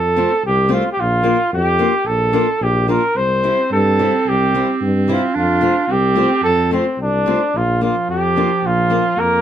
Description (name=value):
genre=alpine folk, alpine dance band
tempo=110 BPM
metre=2/4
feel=rubato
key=F major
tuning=A4 = 440 Hz
part: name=warm flugelhorn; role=melody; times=0.0-9.4 s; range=C4 to C5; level=-16 LUFS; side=right 1 dB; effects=none
part: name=warm tuba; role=bass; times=0.0-9.4 s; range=Bb1 to G2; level=-20 LUFS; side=left 1 dB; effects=none
part: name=fingerpicked steel-string acoustic guitar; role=accompaniment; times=0.2-9.0 s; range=G3 to F4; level=-20 LUFS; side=left 4 dB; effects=none
part: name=bright clarinet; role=second line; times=3.2-9.4 s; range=F3 to D4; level=-22 LUFS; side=right 5 dB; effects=none
room=moderate studio reverb, RT60 0.5 s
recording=none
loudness=-14 LUFS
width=side -10 dB against mid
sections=0.0-7.5 A section; 7.5-9.4 B section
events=none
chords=0.0 F; 1.0 Bb; 3.2 C; 5.4 F; 7.5 Bb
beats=0.45 | 0.98 1.52 | 2.07 2.61 | 3.17 3.72 | 4.27 4.82 | 5.36 5.89 | 6.43 6.98 | 7.54 8.09 | 8.64 9.18